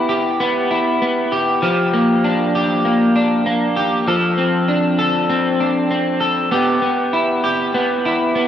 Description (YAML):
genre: dream pop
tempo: 98 BPM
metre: 4/4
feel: straight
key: unclear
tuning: A4 = 441 Hz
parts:
  - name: electric guitar at the edge of break-up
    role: solo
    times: 0.0-8.5 s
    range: F3 to A4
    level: -15 LUFS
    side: equal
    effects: analog chorus, analog delay
room: wet spring reverb, RT60 1.7 s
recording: echo-heavy mix, cassette tape, nothing above 10.5 kHz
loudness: -15 LUFS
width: side -10 dB against mid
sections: 0.0-8.5 A section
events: none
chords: 0.0 Em/B; 1.6 Gm7; 4.1 F6; 6.5 Em/B